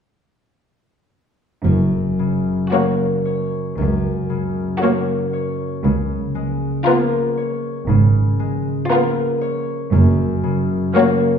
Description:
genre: classical, slow romantic movement for symphony orchestra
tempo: 58 BPM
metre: 4/4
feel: rubato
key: F# major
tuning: A4 = 440 Hz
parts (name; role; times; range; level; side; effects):
- concert harp; arpeggios; 1.6-11.4 s; F#2 to C#5; -20 LUFS; left 2 dB; none
- muted studio cello section; bass; 1.6-10.8 s; C#2 to G#2; -21 LUFS; right 2 dB; none
- muted studio double bass section; bass; 1.6-10.8 s; F#1 to C#2; -20 LUFS; right 4 dB; none
- muted studio violin section; melody; 2.7-11.4 s; A#4 to C#5; -23 LUFS; left 5 dB; none
- muted studio violin section; second line; 2.7-11.4 s; E#4 to F#4; -23 LUFS; left 2 dB; none
- muted studio viola section; accompaniment; 2.7-11.4 s; A#3 to B3; -21 LUFS; right 1 dB; none
room: wet recital hall reverb, RT60 1.5 s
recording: heard from further back in the room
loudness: -16 LUFS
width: side -7 dB against mid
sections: 1.6-11.4 A section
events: none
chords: 1.6 F#; 5.8 C#6; 9.9 F#

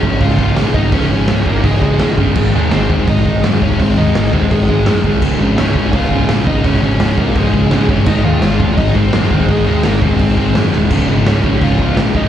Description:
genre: punk rock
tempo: 168 BPM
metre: 4/4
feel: straight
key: Db major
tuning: A4 = 440 Hz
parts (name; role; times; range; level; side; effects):
- bluesy overdriven lead guitar; melody; 0.0-12.3 s; Ab3 to F5; -22 LUFS; equal; distortion, slapback echo
- overdriven semi-hollow guitar; riff; 0.0-12.3 s; Db2 to Ab3; -18 LUFS; right 8 dB; slapback echo
- sludgy distorted guitar; riff; 0.0-12.3 s; Db2 to Ab3; -17 LUFS; left 9 dB; overdrive
- fuzz picked electric bass; bass; 0.0-12.3 s; Db1 to Gb2; -16 LUFS; equal; overdrive
- raw garage drum kit; drums; 0.0-12.2 s; crash cymbal, hi-hat, kick drum, snare drum; -17 LUFS; equal; none
- sludgy distorted guitar; riff; 10.9-12.3 s; Db2 to Db3; -22 LUFS; equal; none
room: studio reverb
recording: live gig heard through the venue's PA, club reverb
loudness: -11 LUFS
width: side -10 dB against mid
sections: 0.0-12.3 A section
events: drum fill 10.7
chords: 0.0 Db; 2.4 Ab; 5.2 Db; 8.1 Ab; 10.9 Db

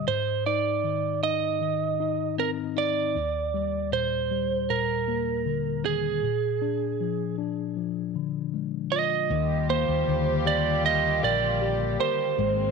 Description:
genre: pop ballad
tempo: 78 BPM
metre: 4/4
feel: straight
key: Eb major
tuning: A4 = 440 Hz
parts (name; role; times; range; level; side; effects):
- lightly driven lead guitar; melody; 0.0-12.7 s; Ab4 to Eb5; -26 LUFS; right 9 dB; none
- mellow tine electric piano; accompaniment; 0.0-12.7 s; Eb2 to Bb4; -29 LUFS; left 12 dB; medium stereo tremolo
- warm studio string section; sustained chords; 9.3-12.7 s; G3 to G4; -32 LUFS; left 2 dB; none
- fretless electric bass; bass; 9.3-12.7 s; Ab1 to Eb2; -29 LUFS; left 2 dB; none
room: moderate spring reverb, RT60 1.3 s, digital ambience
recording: 1960s-style stereo with parts hard left and right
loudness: -24 LUFS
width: side -4 dB against mid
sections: 0.0-9.3 A section; 9.3-12.7 B section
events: none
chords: 0.1 Ab; 3.2 Ebmaj7; 6.2 Bb7; 9.3 Ebmaj7

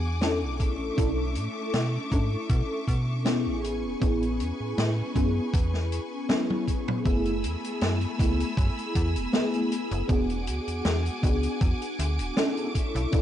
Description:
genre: vaporwave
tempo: 79 BPM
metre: 4/4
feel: swing 53% on 16ths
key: unclear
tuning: A4 = 442 Hz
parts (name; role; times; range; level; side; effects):
- FM electric piano with soft pad layer; accompaniment; 0.0-13.2 s; A3 to A4; -29 LUFS; left 1 dB; tremolo, ensemble chorus, analog delay
- bright studio string section; sustained chords; 0.0-13.2 s; A3 to E6; -37 LUFS; left 1 dB; none
- slap-like FM bass; bass; 0.0-13.2 s; D1 to B2; -28 LUFS; equal; none
- swinging big-band drum kit; drums; 0.2-13.2 s; hi-hat, snare drum, toms; -31 LUFS; equal; none
- electronic kick drum; drums; 0.6-13.2 s; none; -25 LUFS; equal; none
room: small room reverb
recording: cassette tape, nothing above 10.8 kHz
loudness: -24 LUFS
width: side -11 dB against mid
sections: 0.0-7.1 A section; 7.1-13.2 B section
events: drum fill 6.3-7.1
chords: 0.0 E9; 0.6 Bm11; 3.6 F#m11; 10.1 E9

